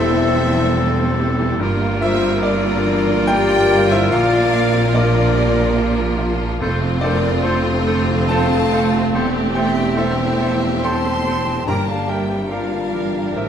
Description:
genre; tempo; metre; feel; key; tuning
cinematic, emotional film score for orchestra; 72 BPM; 3/4; rubato; G dorian; A4 = 440 Hz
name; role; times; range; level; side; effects
clear studio violin section; melody; 0.0-13.5 s; D4 to A4; -28 LUFS; left 3 dB; none
bright clarinet; second line; 0.0-13.5 s; C4 to A4; -29 LUFS; equal; none
hollow concert flute; second line; 0.0-13.5 s; A4 to A5; -25 LUFS; left 1 dB; none
rich studio violin section; second line; 0.0-13.5 s; C5 to C6; -28 LUFS; left 1 dB; none
warm oboe; second line; 0.0-13.5 s; A4 to C5; -27 LUFS; equal; none
bright grand piano; accompaniment; 0.0-13.5 s; E2 to C6; -23 LUFS; left 1 dB; none
rich studio viola section; accompaniment; 0.0-13.5 s; F3 to Bb4; -23 LUFS; right 2 dB; none
mellow French horn section; sustained chords; 0.0-13.5 s; C4 to C5; -23 LUFS; left 4 dB; none
clear studio cello section; bass; 0.0-13.5 s; E2 to Bb2; -24 LUFS; right 2 dB; none
rich studio double bass section; bass; 0.0-13.5 s; E1 to Bb1; -23 LUFS; right 2 dB; none
timpani; percussion; 11.7-12.9 s; G2; -29 LUFS; left 2 dB; none
room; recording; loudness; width
wet recital hall reverb, RT60 1.4 s; none; -15 LUFS; side -8 dB against mid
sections
0.0-13.5 A section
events
none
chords
0.0 C6/E; 1.6 Gm7; 4.1 Bb; 6.6 F; 9.1 C6/E; 11.7 Gm7

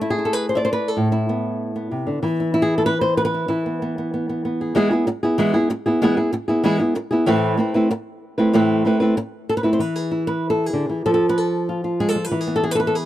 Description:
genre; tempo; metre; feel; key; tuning
flamenco; 190 BPM; 4/4; straight; E phrygian dominant; A4 = 437 Hz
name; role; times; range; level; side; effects
flamenco guitar; solo; 0.0-13.1 s; A2 to E5; -18 LUFS; equal; none
room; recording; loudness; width
little or no reverb; dry, close 1970s-style studio recording; -18 LUFS; side -13 dB against mid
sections
0.0-4.8 A section; 4.8-9.8 B section; 9.8-13.1 C section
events
none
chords
0.0 Amadd9; 2.2 E5; 4.8 E; 7.3 Amadd9; 9.8 E; 11.1 F; 12.3 E

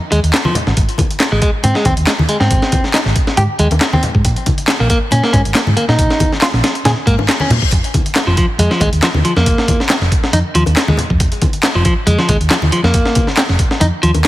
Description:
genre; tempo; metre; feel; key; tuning
breakbeat, breaks; 138 BPM; 4/4; swing 54% on 16ths; F minor; A4 = 439 Hz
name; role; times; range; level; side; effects
clean electric guitar; riff; 0.1-14.1 s; F3 to Ab4; -17 LUFS; equal; ping-pong delay
hollow-body short-scale fingered electric bass; bass; 0.1-14.2 s; F1 to Bb2; -15 LUFS; equal; none
breakbeat sampler-style drum kit; drums; 0.1-14.3 s; hi-hat, kick drum, snare drum; -16 LUFS; equal; small room reverb
electronic handclaps; drums; 0.3-14.3 s; none; -22 LUFS; equal; overdrive, small room reverb
congas and bongos; percussion; 0.4-14.2 s; none; -21 LUFS; left 2 dB; none
reverse cymbal; sound effects; 7.1-7.7 s; none; -24 LUFS; left 6 dB; none
room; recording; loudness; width
light reverb; heavily compressed radio sound; -11 LUFS; side -16 dB against mid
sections
0.0-14.3 A section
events
reverse cymbal 7.1-7.7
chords
0.0 Fm7; 0.8 Ab; 4.2 N.C.; 7.7 F7(no3)

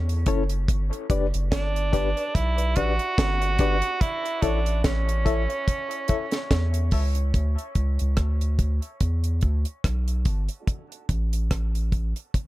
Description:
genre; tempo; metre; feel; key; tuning
dub reggae; 72 BPM; 4/4; swing 56% on 16ths; D major; A4 = 440 Hz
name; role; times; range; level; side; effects
soft dub sub bass; bass; 0.0-12.1 s; F#1 to E2; -24 LUFS; equal; none
deep reggae drum kit; drums; 0.1-12.5 s; hi-hat, kick drum, rim click, snare drum; -24 LUFS; equal; none
reed electric piano; stabs; 0.3-7.1 s; C#4 to E5; -31 LUFS; left 6 dB; fast tremolo, high-pass filter, dub echo
clear tenor saxophone; melody; 1.5-6.9 s; C#4 to F#4; -29 LUFS; right 3 dB; dub echo
clean electric guitar; accompaniment; 7.8-10.4 s; D4 to A4; -55 LUFS; right 1 dB; none
room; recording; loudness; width
little or no reverb; none; -22 LUFS; side -17 dB against mid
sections
0.0-7.3 A section; 7.3-12.5 B section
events
break 0.0-7.3; filter sweep on clean electric guitar 7.3-12.5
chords
0.0 A; 0.7 G; 4.0 A; 7.3 D; 10.7 A5

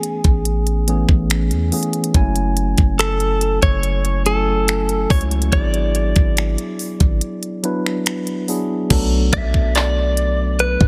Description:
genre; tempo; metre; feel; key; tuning
contemporary R&B; 71 BPM; 4/4; straight; B dorian; A4 = 440 Hz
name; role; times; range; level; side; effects
direct-recorded clean electric guitar; melody; 0.0-10.9 s; G#4 to E5; -24 LUFS; equal; spring reverb, delay
mellow tine electric piano; accompaniment; 0.0-10.9 s; E3 to G#5; -25 LUFS; equal; none
trap drum kit; drums; 0.0-10.9 s; crash cymbal, finger snaps, handclaps, hi-hat, kick drum; -20 LUFS; equal; soft clipping on snare
warm 808-style bass; bass; 0.2-10.9 s; F#1 to F#2; -21 LUFS; equal; none
room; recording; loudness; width
little or no reverb; dense, heavily limited modern master; -18 LUFS; mono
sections
0.0-8.9 A section; 8.9-10.9 B section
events
break 7.2-8.9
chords
0.0 Amaj7; 2.1 F#m7; 5.5 E7/G#; 8.9 Bm7

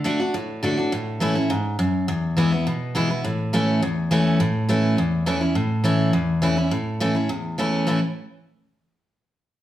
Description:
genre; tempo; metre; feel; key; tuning
bluegrass; 207 BPM; 4/4; straight; A major; A4 = 440 Hz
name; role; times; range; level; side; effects
picked steel-string acoustic guitar; solo; 0.0-8.0 s; E2 to F#4; -20 LUFS; equal; none
room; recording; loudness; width
wet large studio reverb, RT60 0.9 s; heard from further back in the room; -20 LUFS; side -13 dB against mid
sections
0.0-5.6 A section; 5.6-7.9 B section; 7.9-9.0 C section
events
none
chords
0.0 D; 0.9 A; 2.1 E; 3.2 A

